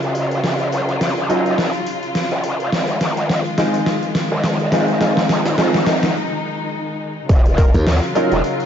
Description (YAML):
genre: glitch hop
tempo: 105 BPM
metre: 4/4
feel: swing 57% on 16ths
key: Eb dorian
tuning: A4 = 439 Hz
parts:
  - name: rich chamber string section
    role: sustained chords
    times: 0.0-8.7 s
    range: Db3 to F4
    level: -23 LUFS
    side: left 2 dB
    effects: sidechain pumping
  - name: growl bass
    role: bass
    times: 0.0-8.4 s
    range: Eb1 to F2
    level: -20 LUFS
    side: equal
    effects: chorus, high-pass filter
  - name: dubstep drum kit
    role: drums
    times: 0.0-8.7 s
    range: hi-hat, snare drum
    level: -22 LUFS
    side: equal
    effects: overdrive
  - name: clear grand piano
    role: stabs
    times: 1.3-8.3 s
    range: Gb3 to F4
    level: -20 LUFS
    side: equal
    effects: wide subtle chorus, sidechain pumping, low-pass filter, diffuse ambient delay
  - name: electronic kick drum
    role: drums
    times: 7.3-7.7 s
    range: none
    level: -13 LUFS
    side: equal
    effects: overdrive
  - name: plucky unison lead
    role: melody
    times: 7.6-8.3 s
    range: Bb4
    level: -24 LUFS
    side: left 1 dB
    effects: diffuse ambient delay
  - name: glassy slap bass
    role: bass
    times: 7.7-7.8 s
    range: Eb2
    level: -15 LUFS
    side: equal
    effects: none
room: wet lush hall reverb, RT60 1.9 s, digital ambience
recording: dreamy mix soaked in reverb, vinyl crackle, nothing above 7.6 kHz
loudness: -16 LUFS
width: side -9 dB against mid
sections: 0.0-7.3 A section; 7.3-8.7 B section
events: build-up 0.0-7.3; drum fill 0.0-6.2; break 6.2-7.3; drop 7.3-8.7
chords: 0.0 Ebm9; 2.7 Fm7; 7.3 Ebm9